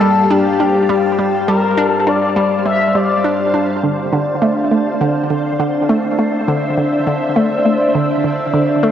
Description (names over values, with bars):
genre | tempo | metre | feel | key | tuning
ambient, sequencer-driven space music | 102 BPM | 4/4 | straight | D minor | A4 = 440 Hz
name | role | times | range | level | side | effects
expressive synth lead | melody | 0.0-3.5 s | G4 to E5 | -16 LUFS | left 5 dB | lush chorus, tape echo
string machine, full ensemble | sustained chords | 0.0-8.9 s | G3 to A5 | -17 LUFS | equal | ensemble chorus, cassette tape
hollow square pluck | riff | 0.0-8.9 s | D3 to D4 | -17 LUFS | right 1 dB | chorus, phaser, cassette tape, tape echo
room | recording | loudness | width
wet spring reverb, RT60 2.5 s | home recording on cassette | -13 LUFS | side -9 dB against mid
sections
0.0-3.8 A section; 3.8-8.9 A section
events
none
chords
0.0 Gm7; 3.8 Dm7